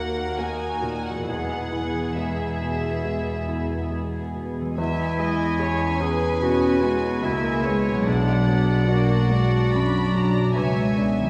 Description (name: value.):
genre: cinematic, emotional film score for orchestra.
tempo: 67-74 BPM.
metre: 4/4.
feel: rubato.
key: E lydian.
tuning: A4 = 438 Hz.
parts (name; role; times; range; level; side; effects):
rich studio violin section; melody; 0.0-11.3 s; E5 to B5; -36 LUFS; equal; none.
warm studio violin section; second line; 0.0-11.3 s; A#3 to E5; -34 LUFS; equal; none.
clear grand piano; accompaniment; 0.0-11.3 s; B1 to D5; -29 LUFS; equal; none.
rich studio viola section; accompaniment; 0.0-11.3 s; G#3 to C#5; -35 LUFS; equal; none.
concert harp; arpeggios; 0.0-11.3 s; B2 to D5; -33 LUFS; equal; none.
warm studio cello section; bass; 0.0-11.3 s; D#2 to C#4; -30 LUFS; equal; none.
clear clarinet; second line; 4.8-11.0 s; D4 to G#4; -29 LUFS; equal; none.
dark studio double bass section; bass; 4.8-11.3 s; B1 to E2; -30 LUFS; equal; none.
room: wet scoring stage reverb, RT60 1.9 s.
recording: recorded in a church or concert hall.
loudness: -23 LUFS.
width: mono.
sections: 0.0-4.8 A section; 4.8-11.3 A section.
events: none.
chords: 0.0 D#m; 1.3 E; 8.1 Bm.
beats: 0.40 | 1.28 2.17 3.05 3.91 | 4.78 5.61 6.42 7.24 | 8.07 8.90 9.74 10.56.